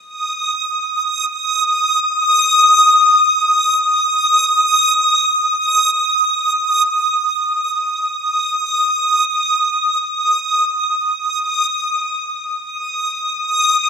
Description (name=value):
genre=ambient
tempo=free time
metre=none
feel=none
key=unclear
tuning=A4 = 440 Hz
part: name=backwards swelling texture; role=solo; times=0.2-13.9 s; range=Eb6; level=-13 LUFS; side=equal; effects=built-in reverb, tape echo
room=wet huge ambient reverb, RT60 8.2 s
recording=none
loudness=-13 LUFS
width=side -6 dB against mid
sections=0.0-10.3 A section; 10.3-13.9 B section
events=none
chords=none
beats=free time